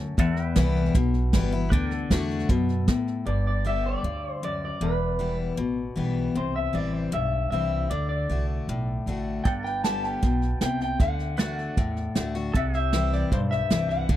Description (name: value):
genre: honky-tonk and classic country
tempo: 155 BPM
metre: 4/4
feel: straight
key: G major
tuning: A4 = 440 Hz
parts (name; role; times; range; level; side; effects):
- picked steel-string acoustic guitar; accompaniment; 0.0-14.2 s; E2 to G4; -28 LUFS; left 4 dB; none
- pedal steel guitar; sustained chords; 0.0-3.3, 9.5-14.1 s; G4 to G5; -38 LUFS; right 3 dB; wide subtle chorus
- upright bass; bass; 0.0-14.2 s; E1 to A2; -28 LUFS; right 1 dB; none
- soft brush drum kit; drums; 0.2-3.1, 9.5-14.2 s; hi-hat, kick drum, snare drum; -24 LUFS; right 1 dB; none
- electric guitar through a small old amp; melody; 3.3-14.2 s; B4 to A5; -30 LUFS; left 1 dB; spring reverb
room: little or no reverb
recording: dry, close 1970s-style studio recording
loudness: -23 LUFS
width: side -13 dB against mid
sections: 0.0-3.3 A section; 3.3-14.2 B section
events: none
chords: 0.2 Em; 1.7 D; 3.3 G; 4.8 Em; 6.4 C; 7.9 D; 9.5 G; 11.0 D; 12.5 C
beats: | 0.18 0.57 0.95 1.34 | 1.72 2.11 2.49 2.88 | 3.27 3.65 4.04 4.43 | 4.81 5.20 5.59 5.98 | 6.36 6.75 7.14 7.52 | 7.91 8.30 8.68 9.07 | 9.46 9.84 10.23 10.62 | 11.00 11.39 11.77 12.16 | 12.55 12.93 13.32 13.71 | 14.09